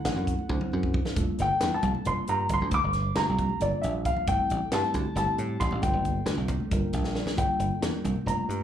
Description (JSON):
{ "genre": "electric jazz fusion", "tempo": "270 BPM (eighths)", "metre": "7/8", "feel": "straight", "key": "G dorian", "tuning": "A4 = 435 Hz", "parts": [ { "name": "dark concert grand piano", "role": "melody", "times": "0.0-8.6 s", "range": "D5 to D6", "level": "-28 LUFS", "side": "left 1 dB", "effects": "slapback echo, plate reverb" }, { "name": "mellow tine electric piano", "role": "accompaniment", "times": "0.0-8.6 s", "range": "F#3 to G5", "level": "-34 LUFS", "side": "left 2 dB", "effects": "plate reverb, slapback echo" }, { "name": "dry thumbed slap bass", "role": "bass", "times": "0.0-8.6 s", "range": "F1 to A2", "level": "-30 LUFS", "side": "right 1 dB", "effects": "none" }, { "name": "congas", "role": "percussion", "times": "0.0-8.5 s", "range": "none", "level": "-36 LUFS", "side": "right 3 dB", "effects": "slapback echo" }, { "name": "crisp fusion drum kit", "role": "drums", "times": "0.1-8.6 s", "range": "hi-hat, kick drum, snare drum, toms", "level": "-31 LUFS", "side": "equal", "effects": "none" } ], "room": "moderate club reverb, RT60 0.5 s", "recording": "live gig heard through the venue's PA, club reverb", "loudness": "-25 LUFS", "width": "side -10 dB against mid", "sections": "0.0-7.4 A section; 7.4-8.6 A section", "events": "drum fill 0.5-1.2, 7.1-7.4; tine electric piano fill 6.7-7.4", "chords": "0.0 D7; 1.2 Gm7; 4.3 Am7; 5.8 Gm9; 7.4 Gm7" }